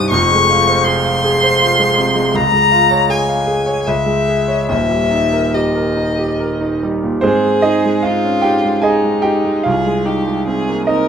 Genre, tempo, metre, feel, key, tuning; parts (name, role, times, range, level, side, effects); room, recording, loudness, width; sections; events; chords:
classical, romantic duo for violin and grand piano; 71-81 BPM; 3/4; rubato; Ab major; A4 = 441 Hz
rich violin; melody; 0.0-11.1 s; Eb4 to Db6; -16 LUFS; left 3 dB
bright concert grand piano; accompaniment; 0.0-11.1 s; Eb1 to Ab5; -15 LUFS; right 2 dB
moderate recital hall reverb, RT60 1.7 s; close, detailed microphones; -12 LUFS; side -7 dB against mid
0.0-7.2 A section; 7.2-11.1 B section
0.1 Fm; 2.4 Db; 3.9 Dbm; 4.7 Eb; 7.2 Ab; 9.7 Ab/C